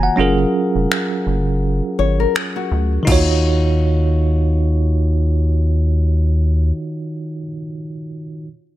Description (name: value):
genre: contemporary R&B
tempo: 83 BPM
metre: 4/4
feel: swing 58% on 16ths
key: Eb minor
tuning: A4 = 440 Hz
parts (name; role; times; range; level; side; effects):
- bell-like tine electric piano; accompaniment; 0.0-8.5 s; Eb3 to Bb5; -20 LUFS; right 2 dB; fast stereo tremolo
- rubbery square bass; bass; 0.0-6.7 s; F1 to Eb2; -16 LUFS; equal; none
- smooth R&B drum kit; drums; 0.9-3.3 s; crash cymbal, finger snaps, kick drum; -21 LUFS; left 1 dB; none
- nylon-string guitar; arpeggios; 2.0-3.0 s; Gb4 to Db5; -21 LUFS; left 11 dB; none
room: little or no reverb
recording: none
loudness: -15 LUFS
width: side -14 dB against mid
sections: 0.0-3.1 A section; 3.1-6.0 B section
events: kick muted 0.2-3.1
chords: 0.2 Gbmaj7; 3.1 Ebm9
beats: | 0.18 0.90 1.63 2.35 | 3.07 3.79 4.52 5.24